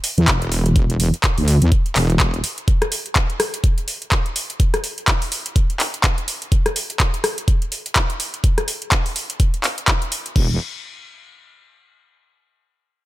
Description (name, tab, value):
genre	bass house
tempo	125 BPM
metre	4/4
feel	swing 58% on 16ths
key	unclear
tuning	A4 = 440 Hz
part	garage drum kit	drums	0.0-10.5 s	crash cymbal, handclaps, hi-hat, rim click	-21 LUFS	equal	none
part	wobble bass	bass	0.2-2.4, 10.4-10.6 s	E1 to E2	-16 LUFS	equal	chorus, tube saturation, sidechain pumping
part	electronic kick drum	drums	0.3-10.5 s	none	-18 LUFS	equal	none
room	little or no reverb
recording	none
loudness	-17 LUFS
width	side -17 dB against mid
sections	0.0-10.4 A section; 10.4-12.3 B section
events	none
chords	none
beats	0.28 | 0.76 1.24 1.72 2.20 | 2.68 3.16 3.64 4.12 | 4.60 5.08 5.56 6.04 | 6.52 7.00 7.48 7.96 | 8.44 8.92 9.40 9.88 | 10.36